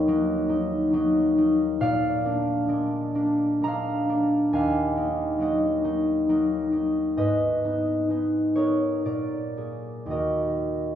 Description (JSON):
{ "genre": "classical, solo harp piece", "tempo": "55-71 BPM", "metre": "3/4", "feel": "rubato", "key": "Eb minor", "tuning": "A4 = 440 Hz", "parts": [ { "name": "concert harp", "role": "solo", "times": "0.0-11.0 s", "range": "Eb2 to Bb5", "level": "-22 LUFS", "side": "equal", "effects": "none" } ], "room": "wet recital hall reverb, RT60 1.7 s", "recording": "heard from further back in the room", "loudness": "-22 LUFS", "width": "side -10 dB against mid", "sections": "0.0-11.0 A section", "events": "none", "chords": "0.0 Ebm; 1.8 Bb7; 4.5 Ebm; 7.2 Abm; 9.1 Bb7; 10.1 Ebm" }